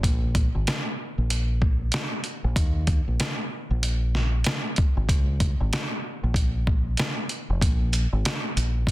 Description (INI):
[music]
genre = hip hop, boom-bap hip-hop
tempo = 95 BPM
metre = 4/4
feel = swing 61% on 16ths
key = unclear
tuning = A4 = 438 Hz
[part]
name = deep dub fingered electric bass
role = bass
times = 0.0-8.8 s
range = F1 to Eb2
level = -24 LUFS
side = equal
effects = none
[part]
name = trip hop sampler-style drum kit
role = drums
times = 0.0-8.9 s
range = hi-hat, kick drum, shaker, snare drum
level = -24 LUFS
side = equal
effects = none
[sound]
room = little or no reverb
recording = dense, heavily limited modern master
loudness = -22 LUFS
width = side -17 dB against mid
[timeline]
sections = 0.0-7.6 A section; 7.6-8.9 B section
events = none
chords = none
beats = | 0.04 0.67 1.30 1.93 | 2.56 3.19 3.82 4.46 | 5.09 5.72 6.35 6.98 | 7.61 8.24 8.88